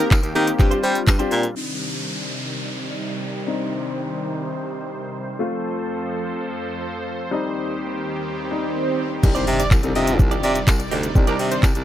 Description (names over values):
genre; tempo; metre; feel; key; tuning
dance-pop; 125 BPM; 4/4; straight; C dorian; A4 = 441 Hz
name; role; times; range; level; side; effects
plucky unison lead; melody; 0.0-0.9, 9.4-11.6 s; G4 to Eb5; -26 LUFS; right 2 dB; sidechain pumping, ping-pong delay
warm baby grand piano; accompaniment; 0.0-11.6 s; G3 to A4; -26 LUFS; left 4 dB; sidechain pumping, low-pass filter
filtered supersaw swell; sustained chords; 0.0-11.8 s; Eb2 to D5; -28 LUFS; right 1 dB; sidechain pumping, low-pass filter
direct-recorded clean electric guitar; riff; 0.0-1.5, 9.2-11.8 s; D4 to D5; -30 LUFS; right 8 dB; lush chorus
warm baritone saxophone; bass; 0.0-1.5, 9.2-11.8 s; C2 to G3; -22 LUFS; equal; sidechain pumping
smooth R&B drum kit; drums; 0.0-1.5, 9.2-11.8 s; crash cymbal, handclaps, hi-hat, kick drum, shaker; -18 LUFS; equal; none
tambourine; percussion; 0.1-1.2, 9.7-11.7 s; none; -34 LUFS; left 4 dB; none
downlifter, swell and impact; sound effects; 1.6-11.2 s; none; -30 LUFS; right 1 dB; none
room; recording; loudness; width
little or no reverb; none; -20 LUFS; side -12 dB against mid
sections
0.0-1.6 A section; 1.6-9.2 B section; 9.2-11.8 A section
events
drop 0.0-1.6, 9.2-11.8; filter sweep 1.6-9.2; swell 8.3-9.2; impact 9.2-11.2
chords
0.0 Eb6; 0.6 G7sus4; 1.6 Cmadd9; 5.4 F; 7.3 Eb6; 9.2 Cmadd9